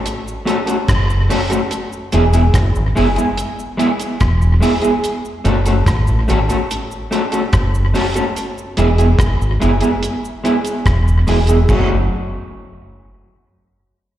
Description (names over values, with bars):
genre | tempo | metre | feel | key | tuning
roots reggae | 72 BPM | 4/4 | straight | unclear | A4 = 440 Hz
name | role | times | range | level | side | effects
damped 70s drum kit | drums | 0.1-11.9 s | crash cymbal, hi-hat, kick drum, rim click | -19 LUFS | equal | analog delay
cabasa | percussion | 0.1-12.1 s | none | -39 LUFS | right 3 dB | none
electric guitar at the edge of break-up | accompaniment | 0.5-11.9 s | F#3 to A4 | -18 LUFS | equal | spring reverb, tape echo, slapback echo
deep dub fingered electric bass | bass | 0.9-12.1 s | E1 to A1 | -14 LUFS | equal | none
room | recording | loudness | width
light reverb | live gig heard through the venue's PA, recital hall reverb | -13 LUFS | side -12 dB against mid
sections
0.0-11.7 A section; 11.7-14.2 B section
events
none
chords
0.0 F#m; 1.7 E; 5.0 F#m; 8.4 E; 11.7 N.C.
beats
0.05 0.88 | 1.71 2.54 3.38 4.21 | 5.04 5.87 6.70 7.53 | 8.36 9.19 10.02 10.86 | 11.69